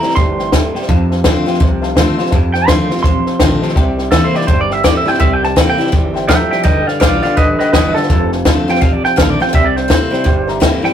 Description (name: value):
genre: rockabilly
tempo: 166 BPM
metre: 4/4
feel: swing 62% on 8ths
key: C mixolydian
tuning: A4 = 440 Hz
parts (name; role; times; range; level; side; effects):
- electric guitar through a small old amp; melody; 0.0-10.9 s; A4 to C6; -16 LUFS; right 2 dB; tremolo
- dark upright piano; accompaniment; 0.0-10.9 s; B4 to C6; -25 LUFS; left 5 dB; none
- picked steel-string acoustic guitar; accompaniment; 0.0-10.9 s; F2 to F4; -19 LUFS; left 3 dB; none
- electric guitar through a small old amp; riff; 0.0-10.9 s; F2 to A3; -20 LUFS; right 2 dB; spring reverb
- upright bass; bass; 0.0-10.9 s; F1 to F2; -22 LUFS; equal; none
- compact cocktail drum kit; drums; 0.0-10.9 s; hi-hat, kick drum, snare drum; -14 LUFS; equal; none
room: light reverb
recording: rough rehearsal-room recording, warm saturation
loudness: -11 LUFS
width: side -9 dB against mid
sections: 0.0-10.9 A section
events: clean electric guitar solo 0.0-10.9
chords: 0.0 C; 0.9 F7; 3.8 C7; 6.7 G7; 8.1 F7; 9.5 C7